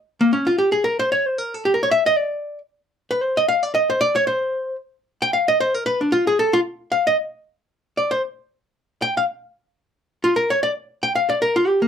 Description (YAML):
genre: jazz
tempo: 228 BPM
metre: 4/4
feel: swing 59% on 8ths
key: unclear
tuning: A4 = 440 Hz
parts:
  - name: archtop guitar, miked and amplified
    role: solo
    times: 0.2-11.9 s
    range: Bb3 to G5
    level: -17 LUFS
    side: equal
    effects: none
room: light reverb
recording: close, detailed microphones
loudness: -18 LUFS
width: side -8 dB against mid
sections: 0.0-7.4 A section; 7.4-11.9 A section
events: hollow-body jazz guitar solo 0.0-11.9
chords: none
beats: | 0.03 0.30 0.56 0.83 | 1.09 1.35 1.62 1.88 | 2.15 2.41 2.67 2.94 | 3.20 3.46 3.73 3.99 | 4.26 4.52 4.78 5.05 | 5.31 5.57 5.84 6.10 | 6.36 6.63 6.89 7.16 | 7.42 7.68 7.95 8.21 | 8.47 8.74 9.00 9.27 | 9.53 9.79 10.06 10.32 | 10.59 10.85 11.11 11.38 | 11.64